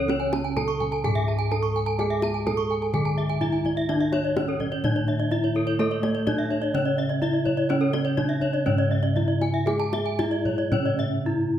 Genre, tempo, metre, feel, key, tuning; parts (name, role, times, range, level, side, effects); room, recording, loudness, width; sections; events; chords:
Balinese gamelan; 125 BPM; 4/4; uneven beats; C# pelog; A4 = 440 Hz
gamelan-type bronze metallophone; melody; 0.0-11.6 s; A3 to A4; -27 LUFS; right 1 dB
gamelan-type bronze metallophone; accompaniment; 0.0-11.6 s; C#3 to A3; -32 LUFS; right 3 dB
gamelan-type bronze metallophone; arpeggios; 0.0-11.0 s; A4 to C#6; -32 LUFS; right 6 dB
gamelan-type bossed gongs; bass; 0.0-11.6 s; G#2 to A4; -28 LUFS; left 1 dB
gamelan-type bronze metallophone; arpeggios; 0.1-11.1 s; A4 to A5; -30 LUFS; left 4 dB
kendang; percussion; 0.1-11.1 s; -33 LUFS; left 1 dB
wet recital hall reverb, RT60 1.4 s; -22 LUFS; side -10 dB against mid
0.0-11.6 A section